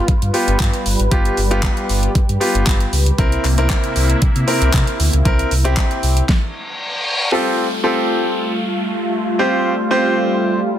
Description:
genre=dance-pop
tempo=116 BPM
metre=4/4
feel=straight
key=F major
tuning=A4 = 439 Hz
part: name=filtered supersaw swell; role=sustained chords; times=0.0-10.8 s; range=C3 to B4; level=-22 LUFS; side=equal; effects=sidechain pumping
part: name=sub bass with octave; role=bass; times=0.1-6.2 s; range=G1 to C3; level=-17 LUFS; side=equal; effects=sidechain pumping
part: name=pop drum kit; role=drums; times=0.1-6.4 s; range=handclaps, hi-hat, kick drum, snare drum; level=-18 LUFS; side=equal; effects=overdrive
part: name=bright concert grand piano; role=accompaniment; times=0.3-10.6 s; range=B3 to C5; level=-19 LUFS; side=equal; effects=sidechain pumping
part: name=group handclap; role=percussion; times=3.4-5.9 s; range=none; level=-32 LUFS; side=left 7 dB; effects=none
part: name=reverse cymbal and downlifter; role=sound effects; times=6.5-10.8 s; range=none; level=-24 LUFS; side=left 1 dB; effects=none
room=light reverb, digital ambience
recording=dense, heavily limited modern master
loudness=-14 LUFS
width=side -11 dB against mid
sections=0.0-7.3 A section; 7.3-10.8 B section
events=stop 6.3-7.3; reverse cymbal 6.5-7.3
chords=0.0 G7; 3.2 C7; 7.3 Fadd9

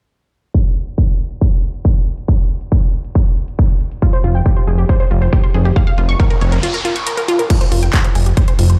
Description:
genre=uplifting trance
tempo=138 BPM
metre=4/4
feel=straight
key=F minor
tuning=A4 = 440 Hz
part: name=big-room dance drum kit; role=drums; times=0.5-8.8 s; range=crash cymbal, handclaps, hi-hat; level=-27 LUFS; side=equal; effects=sidechain pumping on hats, studio reverb, sidechain pumping on cymbals
part: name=electronic kick drum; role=drums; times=0.5-8.5 s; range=none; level=-16 LUFS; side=equal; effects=studio reverb
part: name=unison pluck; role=arpeggios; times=4.0-8.8 s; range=F4 to Db6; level=-23 LUFS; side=equal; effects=sidechain pumping, delay
part: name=fat analog bass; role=bass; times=4.2-8.8 s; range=F1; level=-15 LUFS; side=equal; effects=sidechain pumping
part: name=noise sweep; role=sound effects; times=5.9-7.5 s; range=none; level=-28 LUFS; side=equal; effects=none
room=little or no reverb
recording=played on a big sound system in a bare room, stone room reverb, low-pass filter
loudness=-15 LUFS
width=mono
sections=0.5-7.5 A section; 7.5-8.8 B section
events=filter sweep 0.5-7.5; noise sweep 5.9-7.5; kick drops out 6.6-7.5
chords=0.5 N.C.; 4.0 Fmadd9; 5.8 Bbm/F; 7.5 Fsus2

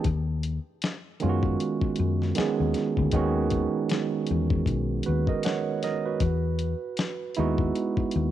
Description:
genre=R&B, neo-soul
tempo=78 BPM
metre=4/4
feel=swing 58% on 16ths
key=B major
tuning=A4 = 440 Hz
part: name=barky tine electric piano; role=accompaniment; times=0.0-8.3 s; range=D#3 to F#5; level=-27 LUFS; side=right 5 dB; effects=auto-pan, cassette tape
part: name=dusty soul sampler-style drum kit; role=drums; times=0.0-8.3 s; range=hi-hat, kick drum, snare drum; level=-29 LUFS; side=left 3 dB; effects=cassette tape
part: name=woody fretless electric bass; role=bass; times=0.1-8.3 s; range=B1 to F#2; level=-26 LUFS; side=left 3 dB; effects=none
room=little or no reverb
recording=home recording on cassette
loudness=-24 LUFS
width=side -12 dB against mid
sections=0.0-8.3 A section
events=none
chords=0.1 B6; 6.2 Emaj7

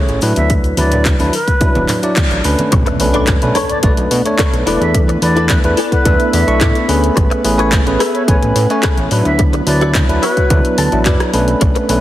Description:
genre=nu-disco, nu disco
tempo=108 BPM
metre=4/4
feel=straight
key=unclear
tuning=A4 = 440 Hz
part: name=bell-like tine electric piano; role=accompaniment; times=0.0-12.0 s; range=F#3 to C#6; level=-17 LUFS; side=equal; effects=sidechain pumping, ping-pong delay
part: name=fat analog bass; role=bass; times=0.1-12.0 s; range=D1 to B2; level=-16 LUFS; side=equal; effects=none
part: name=house drum kit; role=drums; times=0.1-12.0 s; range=handclaps, hi-hat, rim click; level=-21 LUFS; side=left 1 dB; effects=none
part: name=cabasa and congas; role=percussion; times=0.1-2.7 s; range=none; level=-24 LUFS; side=right 2 dB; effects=none
part: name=reedy silver concert flute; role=melody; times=0.4-10.8 s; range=B4 to E5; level=-21 LUFS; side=equal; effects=ping-pong delay
part: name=electronic kick drum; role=drums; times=0.5-11.7 s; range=none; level=-14 LUFS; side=equal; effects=none
part: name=lush unison pad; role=sustained chords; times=2.7-12.0 s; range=A3 to B4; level=-23 LUFS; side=right 2 dB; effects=chorus, sidechain pumping
part: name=direct-recorded clean electric guitar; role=riff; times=2.7-11.9 s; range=D4 to A5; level=-20 LUFS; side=left 2 dB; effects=ensemble chorus
part: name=impact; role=sound effects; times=2.7-4.9 s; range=none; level=-26 LUFS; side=equal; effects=none
room=light reverb, digital ambience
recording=heavily compressed radio sound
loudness=-11 LUFS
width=side -14 dB against mid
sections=0.0-2.7 A section; 2.7-12.0 B section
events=band accent 2.2; drop 2.7-12.0; impact 2.7-4.9; clean electric guitar fill 5.5-7.2, 10.5-11.6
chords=0.0 Amaj9; 0.5 D69; 2.7 Bm9; 4.7 E7sus4; 7.2 Amaj9; 9.4 D69

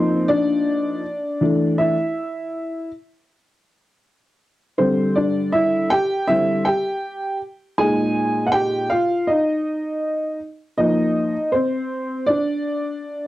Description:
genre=hip hop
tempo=80 BPM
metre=4/4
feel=swing 61% on 16ths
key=unclear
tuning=A4 = 439 Hz
part: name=dark upright piano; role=solo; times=0.0-13.3 s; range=Bb2 to Ab5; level=-18 LUFS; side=equal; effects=cassette tape
room=moderate studio reverb, RT60 0.6 s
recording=home recording on cassette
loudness=-18 LUFS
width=side -16 dB against mid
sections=0.0-13.3 A section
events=upright piano solo 0.0-13.3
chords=0.0 F7sus4; 1.4 E7sus4; 4.8 D9sus4; 7.8 Bb7sus4; 10.8 F7sus4

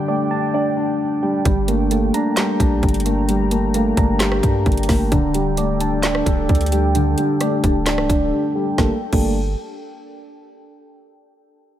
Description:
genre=hip hop, trap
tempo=131 BPM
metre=4/4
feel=half-time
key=G minor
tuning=A4 = 440 Hz
part: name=felt-muted upright piano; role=accompaniment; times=0.0-9.3 s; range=D3 to D5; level=-22 LUFS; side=left 5 dB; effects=low-pass filter
part: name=warbly tape-like pad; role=sustained chords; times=0.0-9.0 s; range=D4 to Bb5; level=-27 LUFS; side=right 1 dB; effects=chorus, built-in reverb, low-pass filter
part: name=soft electric-piano-like synth keys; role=arpeggios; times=0.0-9.3 s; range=G3 to Bb5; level=-22 LUFS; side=right 5 dB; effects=chorus, low-pass filter, digital delay
part: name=warm 808-style bass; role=bass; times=1.5-9.6 s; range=C1 to G2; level=-22 LUFS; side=equal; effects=none
part: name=trap drum kit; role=drums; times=1.5-9.2 s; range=crash cymbal, handclaps, hi-hat, kick drum, rim click, snare drum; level=-20 LUFS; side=equal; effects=none
room=light reverb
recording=none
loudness=-16 LUFS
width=side -11 dB against mid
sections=0.0-8.8 A section; 8.8-10.6 B section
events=break 0.0-1.5, 8.3-8.8; filter sweep 0.0-8.8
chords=0.0 Dsus4; 1.5 Gmadd9; 5.1 Dsus4; 8.8 Gmadd9

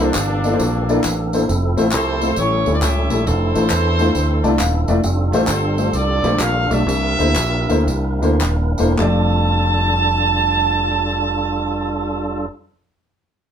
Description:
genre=uptempo gospel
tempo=102-136 BPM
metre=4/4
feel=swing 66% on 8ths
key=F major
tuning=A4 = 444 Hz
part: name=warm horn section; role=melody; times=0.0-12.5 s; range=G3 to A5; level=-21 LUFS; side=right 2 dB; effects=none
part: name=dark upright piano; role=accompaniment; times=0.0-12.5 s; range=F2 to A5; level=-20 LUFS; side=left 2 dB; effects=none
part: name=tonewheel organ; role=sustained chords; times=0.0-12.5 s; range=E3 to Bb4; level=-24 LUFS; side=right 2 dB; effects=slow rotary speaker
part: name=fingered electric bass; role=bass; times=0.0-12.5 s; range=Eb1 to E2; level=-20 LUFS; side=equal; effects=none
part: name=tambourine and handclaps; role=percussion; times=0.0-9.3 s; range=none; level=-26 LUFS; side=left 1 dB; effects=none
room=moderate studio reverb, RT60 0.5 s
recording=band playing live in one room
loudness=-15 LUFS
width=side -8 dB against mid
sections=0.0-1.5 A section; 1.5-9.0 B section; 9.0-13.5 C section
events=upright piano fill 4.2-5.0; slowing down 5.0-9.0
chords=0.0 C13; 1.5 Fmaj7; 2.4 A7; 3.3 Dm9/F; 5.0 F69; 6.9 C13; 9.0 F69

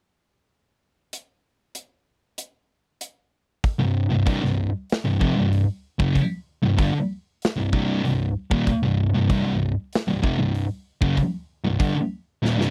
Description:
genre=stoner and doom metal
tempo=96 BPM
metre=4/4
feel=straight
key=C phrygian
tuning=A4 = 440 Hz
part: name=big rock drum kit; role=drums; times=1.1-12.7 s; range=hi-hat, kick drum, snare drum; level=-25 LUFS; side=equal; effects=none
part: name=thick fuzz guitar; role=riff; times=3.8-12.7 s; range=C2 to D3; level=-26 LUFS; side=equal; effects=distortion
part: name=thick fuzz guitar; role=riff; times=3.8-12.7 s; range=C2 to D3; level=-25 LUFS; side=equal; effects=distortion
room=light reverb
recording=dry, close 1970s-style studio recording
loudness=-23 LUFS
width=mono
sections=1.1-3.6 A section; 3.6-12.7 B section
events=drum fill 12.4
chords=1.1 N.C.; 3.6 C5

